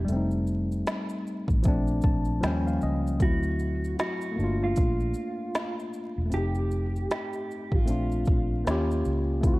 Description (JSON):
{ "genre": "lo-fi hip hop", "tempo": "77 BPM", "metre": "4/4", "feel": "swing 61% on 16ths", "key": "unclear", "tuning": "A4 = 439 Hz", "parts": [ { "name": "tine electric piano", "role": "accompaniment", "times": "0.0-9.6 s", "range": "F3 to A5", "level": "-29 LUFS", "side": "left 1 dB", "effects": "cassette tape" }, { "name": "vintage muted fingered electric bass", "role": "bass", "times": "0.0-9.6 s", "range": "E1 to Eb2", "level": "-28 LUFS", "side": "equal", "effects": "none" }, { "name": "organic electronic drum kit", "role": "drums", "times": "0.1-9.6 s", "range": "finger snaps, hi-hat, kick drum, shaker, snare drum", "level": "-27 LUFS", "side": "equal", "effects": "none" }, { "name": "mellow electric guitar", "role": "melody", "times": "3.2-8.6 s", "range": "F4 to G4", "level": "-34 LUFS", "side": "right 2 dB", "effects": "spring reverb, tape echo" } ], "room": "light reverb, digital ambience", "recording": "dark, warm production, vinyl crackle", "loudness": "-25 LUFS", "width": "side -20 dB against mid", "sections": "0.0-9.6 A section", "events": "tine electric piano fill 1.6-3.2, 8.3-9.4", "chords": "0.1 F7; 1.6 Bbmaj7; 2.4 Eb9; 3.2 D7; 4.4 Gm9; 6.3 F7; 7.9 Bbmaj7; 8.7 Eb9" }